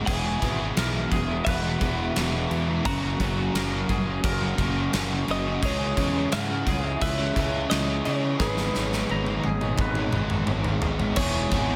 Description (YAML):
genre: rock, shoegaze and dream pop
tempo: 86 BPM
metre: 4/4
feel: straight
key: C# dorian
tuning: A4 = 442 Hz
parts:
  - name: hollow soft pad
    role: sustained chords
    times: 0.0-11.8 s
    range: B3 to G#5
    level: -39 LUFS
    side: equal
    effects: chorus
  - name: overdriven semi-hollow guitar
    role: riff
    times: 0.0-11.8 s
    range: F#2 to G#4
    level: -33 LUFS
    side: equal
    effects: reverse reverb
  - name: thick fuzz guitar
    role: riff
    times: 0.0-11.8 s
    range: E2 to C#4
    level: -33 LUFS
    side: equal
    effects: distortion, ensemble chorus
  - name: direct-recorded clean electric guitar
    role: melody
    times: 0.1-11.8 s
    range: B4 to A#5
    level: -35 LUFS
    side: equal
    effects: spring reverb, digital delay
  - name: twangy electric guitar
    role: arpeggios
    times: 0.1-11.8 s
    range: F#4 to A#5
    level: -38 LUFS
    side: equal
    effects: analog chorus, digital delay
  - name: fuzz fingered electric bass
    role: bass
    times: 0.1-11.8 s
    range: E1 to C#3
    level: -32 LUFS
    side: equal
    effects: overdrive
  - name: gated 80s drum kit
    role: drums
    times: 0.1-11.7 s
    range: crash cymbal, kick drum, snare drum, toms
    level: -31 LUFS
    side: equal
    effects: none
room: light reverb, small room ambience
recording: none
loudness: -25 LUFS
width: mono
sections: 0.0-11.2 A section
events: drum fill 8.4-11.2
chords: 0.1 Eadd9; 2.9 F#; 5.6 C#m; 8.4 G#m; 11.2 Eadd9